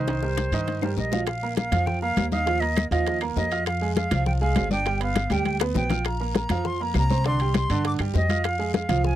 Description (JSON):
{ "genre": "latin, salsa", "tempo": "201 BPM", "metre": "4/4", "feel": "straight", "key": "C minor", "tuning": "A4 = 443 Hz", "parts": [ { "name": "bright silver concert flute", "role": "melody", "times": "0.0-9.2 s", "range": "C5 to D6", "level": "-28 LUFS", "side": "equal", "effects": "none" }, { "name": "bright upright piano", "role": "accompaniment", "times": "0.0-9.1 s", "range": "D3 to F6", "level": "-28 LUFS", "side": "right 6 dB", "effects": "none" }, { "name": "upright bass", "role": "bass", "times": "0.0-9.2 s", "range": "G1 to G2", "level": "-26 LUFS", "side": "equal", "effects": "none" }, { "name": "bongos", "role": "percussion", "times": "0.1-9.2 s", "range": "none", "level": "-31 LUFS", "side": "left 11 dB", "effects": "none" }, { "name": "congas", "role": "percussion", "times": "0.1-9.2 s", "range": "none", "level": "-29 LUFS", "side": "left 3 dB", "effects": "none" }, { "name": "guiro", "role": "percussion", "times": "0.1-9.2 s", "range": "none", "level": "-42 LUFS", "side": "left 24 dB", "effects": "none" }, { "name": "timbales", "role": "percussion", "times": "0.1-9.0 s", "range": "none", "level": "-35 LUFS", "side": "right 10 dB", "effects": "none" }, { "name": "claves", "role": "percussion", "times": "0.4-9.0 s", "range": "none", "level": "-39 LUFS", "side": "left 24 dB", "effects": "none" } ], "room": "little or no reverb", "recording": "dry, close 1970s-style studio recording", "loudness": "-22 LUFS", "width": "side -12 dB against mid", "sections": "0.0-1.3 A section; 1.3-9.2 B section", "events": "drum fill 0.1-1.3, 5.3-6.1", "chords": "0.1 Cm7; 1.3 Bb5; 2.5 Ebsus2; 3.7 Fm; 4.9 G; 6.1 Bbsus2; 7.3 Cmadd9; 8.4 Fm" }